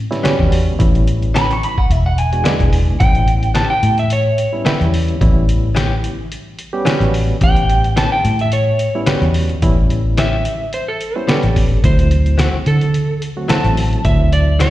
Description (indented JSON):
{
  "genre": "straight-eighth soul blues",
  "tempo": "109 BPM",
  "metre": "4/4",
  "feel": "swing 54% on 16ths",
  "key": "A mixolydian",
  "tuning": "A4 = 439 Hz",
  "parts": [
    { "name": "vintage muted fingered electric bass", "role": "bass", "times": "0.0-14.7 s", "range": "E1 to D3", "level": "-15 LUFS", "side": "equal", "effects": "none" },
    { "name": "barky reed electric piano", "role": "accompaniment", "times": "0.1-14.7 s", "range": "F#3 to G4", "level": "-22 LUFS", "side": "right 2 dB", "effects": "tremolo, slapback echo" },
    { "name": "lo-fi sampler-style drum kit", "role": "drums", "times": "0.1-14.7 s", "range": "hi-hat, kick drum, snare drum", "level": "-18 LUFS", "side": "equal", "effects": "none" },
    { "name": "direct-recorded clean electric guitar", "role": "stabs", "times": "0.2-14.7 s", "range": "E3 to G#4", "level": "-23 LUFS", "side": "left 7 dB", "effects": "slapback echo" },
    { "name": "electric guitar through a small old amp", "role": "melody", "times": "1.4-3.0 s", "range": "E5 to C#6", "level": "-21 LUFS", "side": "right 1 dB", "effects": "lush chorus, slapback echo" },
    { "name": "electric slide guitar", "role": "second line", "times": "3.0-14.7 s", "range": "A4 to A5", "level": "-20 LUFS", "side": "right 1 dB", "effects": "slapback echo" }
  ],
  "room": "light reverb",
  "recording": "live gig heard through the venue's PA, recital hall reverb",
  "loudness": "-13 LUFS",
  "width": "side -15 dB against mid",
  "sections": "0.0-3.0 A section; 3.0-14.7 B section",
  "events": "electric slide guitar solo 3.0-14.7",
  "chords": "0.0 A9; 1.9 E9; 3.0 A9; 11.8 D9",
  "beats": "0.24 | 0.80 1.35 1.90 2.45 | 3.00 3.55 4.11 4.66 | 5.21 5.76 6.31 6.86 | 7.42 7.97 8.52 9.07 | 9.62 10.18 10.73 11.28 | 11.83 12.39 12.94 13.49 | 14.04 14.60"
}